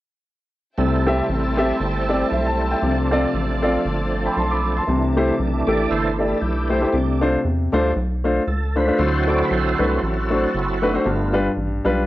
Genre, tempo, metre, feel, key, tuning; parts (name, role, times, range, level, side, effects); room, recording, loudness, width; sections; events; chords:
uptempo gospel; 117 BPM; 4/4; swing 55% on 8ths; C major; A4 = 441 Hz
warm concert grand piano; accompaniment; 0.8-12.0 s; G2 to D6; -20 LUFS; left 1 dB
muted studio string section; sustained chords; 0.8-4.9 s; C5 to A5; -32 LUFS; left 1 dB
overdriven tonewheel organ; sustained chords; 0.8-11.4 s; E3 to D5; -24 LUFS; right 2 dB; slow rotary speaker, chorus vibrato
rubbery square bass; bass; 0.8-12.1 s; F#1 to E2; -23 LUFS; equal
light reverb, small room reverb; worn, warbling old tape, cassette tape, warbly pitch drift; -18 LUFS; side -16 dB against mid
0.8-4.9 A section; 4.9-12.1 B section
tonewheel organ solo 4.9-12.1
0.8 C6; 2.8 F6; 4.9 C6; 6.9 F6/C; 9.0 D7; 11.1 G7